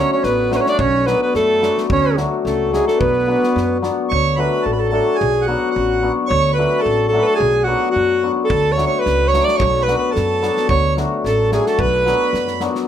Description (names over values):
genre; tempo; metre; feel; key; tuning
balkan folk, Balkan wedding band; 109 BPM; 2/4; swing 53% on 16ths; B minor; A4 = 439 Hz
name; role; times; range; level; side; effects
bright alto saxophone; melody; 0.0-12.6 s; F#4 to D5; -18 LUFS; right 1 dB; plate reverb
accordion; second line; 0.0-12.6 s; G#3 to D6; -23 LUFS; right 4 dB; none
cimbalom; accompaniment; 0.0-12.9 s; F#3 to F#4; -20 LUFS; left 6 dB; none
upright bass; bass; 0.2-12.7 s; A1 to F#2; -22 LUFS; right 1 dB; none
natural country drum kit; percussion; 0.2-3.9, 8.5-12.8 s; kick drum, snare drum; -26 LUFS; right 1 dB; none
room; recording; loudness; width
wet studio reverb, RT60 0.5 s; none; -14 LUFS; side -9 dB against mid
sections
0.0-4.1 A section; 4.1-12.9 A section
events
none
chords
0.0 D; 0.8 Bm; 1.9 D; 3.0 Bm; 4.1 D; 5.2 Bm; 6.3 D; 7.4 Bm; 8.5 D; 9.6 Bm; 10.7 D; 11.8 Bm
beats
0.24 | 0.79 1.35 | 1.90 2.45 | 3.01 3.56 | 4.11 4.66 | 5.21 5.76 | 6.31 6.86 | 7.41 7.96 | 8.50 9.05 | 9.60 10.14 | 10.69 11.24 | 11.79 12.34